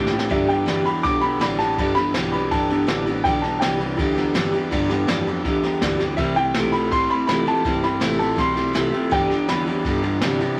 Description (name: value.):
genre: rockabilly.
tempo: 164 BPM.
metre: 4/4.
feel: straight.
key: G major.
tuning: A4 = 440 Hz.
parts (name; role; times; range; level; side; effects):
clear upright piano; melody; 0.0-10.0 s; E5 to D6; -26 LUFS; equal; none.
picked steel-string acoustic guitar; accompaniment; 0.0-10.6 s; G2 to G4; -26 LUFS; equal; none.
electric guitar through a small old amp; riff; 0.0-10.6 s; G2 to A3; -27 LUFS; equal; none.
growling FM bass; bass; 0.0-10.6 s; E1 to C3; -33 LUFS; equal; none.
jazz brush drum kit; drums; 0.1-10.5 s; kick drum, ride cymbal, snare drum; -30 LUFS; equal; none.
room: moderate small room reverb, RT60 0.6 s.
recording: vinyl crackle.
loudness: -21 LUFS.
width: mono.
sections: 0.3-10.6 A section.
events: drum fill 0.0-0.3.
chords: 0.3 G6; 6.2 C6; 9.1 G6.